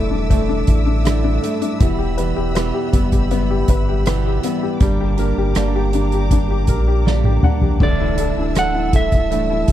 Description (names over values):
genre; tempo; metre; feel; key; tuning
pop ballad; 80 BPM; 4/4; straight; unclear; A4 = 438 Hz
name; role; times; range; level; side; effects
clean electric guitar; melody; 0.0-1.0, 7.8-9.7 s; A4 to F#5; -22 LUFS; right 3 dB; spring reverb
clear upright piano; accompaniment; 0.0-9.7 s; D3 to F#5; -22 LUFS; left 9 dB; none
warm studio string section; sustained chords; 0.0-9.7 s; D4 to E6; -29 LUFS; equal; none
fingerpicked plugged-in steel-string acoustic guitar; arpeggios; 0.0-9.7 s; E2 to G4; -24 LUFS; right 14 dB; none
warm sub bass; bass; 0.0-9.7 s; D1 to Bb1; -20 LUFS; equal; none
downlifter; sound effects; 0.2-1.8 s; none; barely audible; none; none
soft-mallet drum kit; drums; 0.3-9.7 s; crash cymbal, hi-hat, kick drum, rim click, snare drum, toms; -18 LUFS; equal; none
room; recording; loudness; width
little or no reverb; dry, close 1970s-style studio recording; -15 LUFS; side -12 dB against mid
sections
0.0-9.7 A section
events
upright piano fill 6.7-7.8; drum fill 7.1-7.8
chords
0.0 Dsus2; 1.8 Em; 4.8 Gm; 7.8 Dsus2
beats
0.31 1.06 | 1.81 2.56 3.31 4.06 | 4.81 5.56 6.31 7.06 | 7.81 8.56 9.31